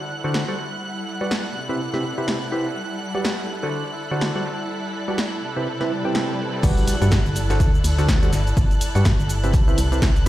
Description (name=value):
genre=piano house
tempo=124 BPM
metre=4/4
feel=swing 59% on 16ths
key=G major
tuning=A4 = 440 Hz
part: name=analog string pad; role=sustained chords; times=0.0-10.3 s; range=F#6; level=-34 LUFS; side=right 2 dB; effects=ensemble chorus, sidechain pumping
part: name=rich studio string section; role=texture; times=0.0-10.3 s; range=C3 to A5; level=-30 LUFS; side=equal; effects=sidechain pumping
part: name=vintage brush drum kit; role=drums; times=0.1-10.3 s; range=hi-hat, snare drum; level=-39 LUFS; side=equal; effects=none
part: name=percussive organ stab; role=riff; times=0.2-10.3 s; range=C3 to G5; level=-25 LUFS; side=right 1 dB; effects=chorus, sidechain pumping, digital delay
part: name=punchy analog drum machine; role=drums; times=0.3-10.3 s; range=crash cymbal, hi-hat, shaker, snare drum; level=-27 LUFS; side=equal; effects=none
part: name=swell and impact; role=sound effects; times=5.8-8.6 s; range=none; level=-31 LUFS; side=left 1 dB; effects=none
part: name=organ-like FM bass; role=bass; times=6.6-10.3 s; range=G1 to G2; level=-20 LUFS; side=equal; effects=sidechain pumping
part: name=electronic kick drum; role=drums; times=6.6-10.1 s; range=none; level=-19 LUFS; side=equal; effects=none
room=light reverb, digital ambience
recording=played on a big sound system in a bare room, stone room reverb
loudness=-19 LUFS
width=side -15 dB against mid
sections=0.0-6.6 A section; 6.6-10.3 B section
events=swell 5.8-6.6; drop 6.6-10.3; impact 6.6-8.6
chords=0.0 D7; 0.6 Gmaj7; 1.6 Cmaj7; 2.8 Gmaj7; 3.7 D7; 4.5 Gmaj7; 5.4 Cmaj7; 6.6 Gmaj7; 7.6 D7; 8.3 Gmaj7